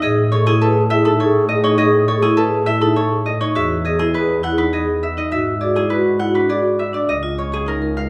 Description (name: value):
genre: classical, minimalist pattern music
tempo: 102 BPM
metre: 3/4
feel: straight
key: E major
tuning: A4 = 441 Hz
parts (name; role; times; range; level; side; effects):
- Celtic harp; melody; 0.0-8.1 s; G#4 to F#5; -23 LUFS; equal; none
- mellow hollow wooden-headed alto flute; second line; 0.0-6.8 s; F#4 to G#4; -23 LUFS; equal; none
- vibraphone with hard mallets; arpeggios; 0.0-8.0 s; D4 to B4; -23 LUFS; equal; none
- rich symphonic double bass section; bass; 0.0-8.1 s; Db2 to A2; -24 LUFS; equal; none
room: moderate recital hall reverb, RT60 1.3 s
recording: dark, warm production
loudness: -17 LUFS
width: mono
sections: 0.0-7.1 A section; 7.1-8.1 B section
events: none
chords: 0.0 Amaj9; 3.5 E69; 5.3 E9/G#; 7.1 Dbadd9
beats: | 0.02 0.61 1.20 | 1.78 2.37 2.96 | 3.55 4.14 4.73 | 5.32 5.90 6.49 | 7.08 7.67